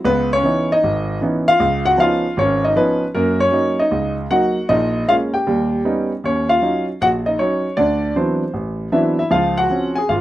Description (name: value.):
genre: solo jazz.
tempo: 156 BPM.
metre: 4/4.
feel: swing 66% on 8ths.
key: unclear.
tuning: A4 = 440 Hz.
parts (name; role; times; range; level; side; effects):
clear concert grand piano; solo; 0.0-10.2 s; G#1 to Ab5; -15 LUFS; equal; none.
room: moderate studio ambience, RT60 0.5 s.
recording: rough home demo mix.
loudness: -15 LUFS.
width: side -14 dB against mid.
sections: 0.0-6.2 A section; 6.2-10.2 B section.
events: none.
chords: 0.1 C#m9; 1.6 C#9; 3.1 F#6; 4.7 A#m7; 5.5 D#aug7; 6.2 Ebm7; 7.8 D13; 9.3 Dbmaj7.